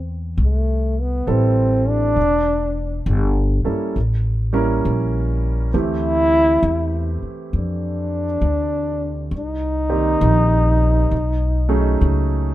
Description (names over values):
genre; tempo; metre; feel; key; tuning
jazz ballad; 67 BPM; 4/4; swing 66% on 8ths; A minor; A4 = 441 Hz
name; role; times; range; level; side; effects
mellow trombone; melody; 0.0-12.2 s; A3 to E4; -20 LUFS; equal; none
upright bass; bass; 0.0-12.5 s; E1 to F2; -19 LUFS; equal; none
warm concert grand piano; accompaniment; 1.3-12.5 s; Eb3 to D5; -24 LUFS; right 3 dB; none
room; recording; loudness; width
little or no reverb; minimal, uncompressed stereo recording; -17 LUFS; side -14 dB against mid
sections
0.0-12.5 A section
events
none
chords
0.0 Am9; 2.2 Em7; 4.0 A7b9; 5.7 Dm11; 9.3 Cm9; 11.1 B13